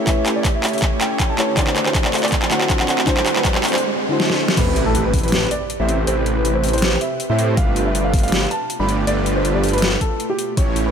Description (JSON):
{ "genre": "future bass", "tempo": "160 BPM", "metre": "4/4", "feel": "half-time", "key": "A minor", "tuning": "A4 = 440 Hz", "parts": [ { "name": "dark baby grand piano", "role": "melody", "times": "0.0-10.9 s", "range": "G4 to B5", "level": "-24 LUFS", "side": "equal", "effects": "sidechain pumping, ping-pong delay" }, { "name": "shimmering ambient pad", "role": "sustained chords", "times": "0.0-10.9 s", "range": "B2 to D5", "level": "-30 LUFS", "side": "equal", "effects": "chorus, built-in reverb, sidechain pumping" }, { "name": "soft supersaw", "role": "riff", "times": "0.0-10.9 s", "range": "A3 to D5", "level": "-23 LUFS", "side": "right 2 dB", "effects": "sidechain pumping" }, { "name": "riser and impact", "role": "sound effects", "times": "0.4-6.1 s", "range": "none", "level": "-27 LUFS", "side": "right 1 dB", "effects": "none" }, { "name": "soft round pluck", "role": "accompaniment", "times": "0.1-4.6 s", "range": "D3 to C#5", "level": "-25 LUFS", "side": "left 2 dB", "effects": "chorus, sidechain pumping, ping-pong delay" }, { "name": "dubstep drum kit", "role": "drums", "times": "0.1-10.8 s", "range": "crash cymbal, handclaps, hi-hat, snare drum", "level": "-21 LUFS", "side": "equal", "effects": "overdrive, studio ambience" }, { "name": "electronic kick drum", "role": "drums", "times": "0.1-5.2, 7.6-10.7 s", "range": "none", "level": "-20 LUFS", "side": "equal", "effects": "overdrive, studio ambience" }, { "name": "wide detuned saw bass", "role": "bass", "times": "4.6-10.9 s", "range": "G1 to A2", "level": "-21 LUFS", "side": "equal", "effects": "chorus, tube saturation, sidechain pumping" } ], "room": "light reverb", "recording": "none", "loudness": "-16 LUFS", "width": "side -7 dB against mid", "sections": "0.0-4.6 A section; 4.6-10.9 B section", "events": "build-up 0.0-4.6; drum fill 0.0-3.8, 4.2-4.6; riser 0.4-4.6; drop 4.6-10.9; impact 4.6-6.1", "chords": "0.0 A7; 1.6 D7; 4.6 Am9; 7.6 G9", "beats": "| 0.07 0.45 0.82 1.20 | 1.57 1.95 2.32 2.70 | 3.07 3.45 3.82 4.20 | 4.57 4.95 5.32 5.70 | 6.07 6.45 6.82 7.20 | 7.57 7.95 8.32 8.70 | 9.07 9.45 9.82 10.20 | 10.57" }